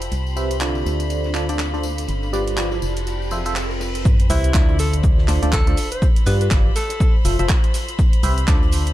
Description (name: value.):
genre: piano house.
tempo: 122 BPM.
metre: 4/4.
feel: swing 58% on 16ths.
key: C major.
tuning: A4 = 440 Hz.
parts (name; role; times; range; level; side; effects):
clear studio violin section; sustained chords; 0.0-8.9 s; C5 to B5; -33 LUFS; left 2 dB; sidechain pumping.
organ-like FM bass; bass; 0.0-8.9 s; F1 to G2; -21 LUFS; equal; sidechain pumping.
house drum kit; drums; 0.0-8.9 s; handclaps, hi-hat, shaker; -28 LUFS; right 2 dB; none.
tambourine; percussion; 0.0-4.0 s; none; -38 LUFS; left 7 dB; none.
airy breathy pad; texture; 0.0-4.1 s; C4 to B5; -32 LUFS; right 1 dB; chorus, sidechain pumping.
damped 70s drum kit; drums; 0.1-8.9 s; hi-hat, snare drum; -39 LUFS; left 2 dB; none.
riser and sub drop; sound effects; 1.6-6.0 s; none; -30 LUFS; equal; none.
barking FM electric piano; riff; 0.4-8.9 s; D3 to E5; -26 LUFS; right 1 dB; chorus, phaser, tremolo, cassette tape, sidechain pumping, digital delay.
electronic kick drum; drums; 4.1-8.6 s; none; -17 LUFS; equal; none.
clear alto saxophone; melody; 4.3-7.1 s; E4 to C5; -28 LUFS; equal; digital delay.
room: small room ambience.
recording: dark, warm production.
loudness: -16 LUFS.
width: side -14 dB against mid.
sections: 0.0-4.1 A section; 4.1-8.9 B section.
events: filter sweep on FM electric piano 0.0-4.1; riser 1.6-4.1; drop 4.1-8.9; impact 4.1-6.0.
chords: 0.1 Cmaj7; 0.9 Dm7; 2.1 G7; 2.8 Fmaj7; 4.1 Cmaj7; 4.8 Dm7; 6.0 G7; 6.8 Fmaj7; 8.0 Cmaj7.